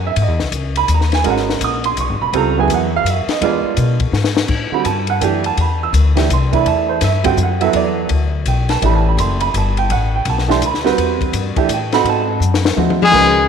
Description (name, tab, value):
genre	modal jazz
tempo	166 BPM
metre	3/4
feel	swing 64% on 8ths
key	C# dorian, A dorian from 4.5 s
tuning	A4 = 436 Hz
part	warm upright piano	accompaniment	0.0-13.5 s	D3 to E6	-17 LUFS	right 8 dB	none
part	upright bass	bass	0.0-13.5 s	E1 to B2	-18 LUFS	left 2 dB	none
part	compact cocktail drum kit	drums	0.2-13.2 s	crash cymbal, hi-hat, kick drum, ride cymbal, snare drum, toms	-21 LUFS	left 6 dB	none
part	warm trumpet	melody	13.0-13.5 s	G#4	-10 LUFS	left 3 dB	none
part	growling tenor saxophone	second line	13.0-13.5 s	G#3	-18 LUFS	left 12 dB	none
room	moderate echo chamber reverb, RT60 2.2 s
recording	1960s-style stereo with parts hard left and right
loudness	-13 LUFS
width	side -7 dB against mid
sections	0.0-4.5 A section; 4.5-13.1 A section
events	drum fill 4.1-4.5, 12.4-13.1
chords	0.0 C#m11; 3.4 E7b9; 4.5 Am11; 12.1 G#7b9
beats	| 0.16 0.52 0.88 | 1.24 1.60 1.96 | 2.33 2.69 3.05 | 3.41 3.77 4.13 | 4.49 4.85 5.21 | 5.57 5.93 6.29 | 6.65 7.01 7.38 | 7.74 8.10 8.46 | 8.82 9.18 9.54 | 9.90 10.26 10.62 | 10.98 11.34 11.70 | 12.06 12.42 12.78 | 13.14